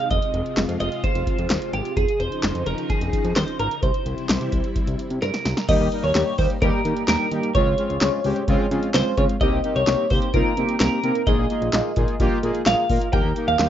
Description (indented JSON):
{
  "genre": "synth-pop",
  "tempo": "129 BPM",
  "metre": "4/4",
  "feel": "straight",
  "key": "unclear",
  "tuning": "A4 = 440 Hz",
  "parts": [
    { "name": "twelve-string electric guitar", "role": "melody", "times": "0.0-13.7 s", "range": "G4 to G5", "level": "-24 LUFS", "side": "right 2 dB", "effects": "wide subtle chorus, slapback echo" },
    { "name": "string machine, full ensemble", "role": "sustained chords", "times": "0.0-5.7, 13.1-13.7 s", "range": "C3 to G4", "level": "-30 LUFS", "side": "left 1 dB", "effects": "ensemble chorus" },
    { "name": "fat analog bass", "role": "bass", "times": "0.1-13.7 s", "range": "F1 to Eb3", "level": "-25 LUFS", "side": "equal", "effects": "none" },
    { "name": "electro analog drum machine", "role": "drums", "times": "0.1-13.7 s", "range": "crash cymbal, handclaps, hi-hat, kick drum, snare drum", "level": "-24 LUFS", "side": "equal", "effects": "none" },
    { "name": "analog synth brass", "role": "accompaniment", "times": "5.7-13.7 s", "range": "G3 to C5", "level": "-23 LUFS", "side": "equal", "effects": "chorus" }
  ],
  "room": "light reverb",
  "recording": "rough home demo mix, nothing above 7.5 kHz",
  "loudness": "-19 LUFS",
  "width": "side -10 dB against mid",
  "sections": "0.0-5.7 A section; 5.7-13.7 B section",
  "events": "drum fill 5.2-5.7",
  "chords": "0.0 Ab/F; 2.0 Dbadd9/F; 3.8 C; 5.7 Eb; 7.5 Dbmaj7; 9.4 Cm7; 11.3 Bb7sus4; 13.1 Eb"
}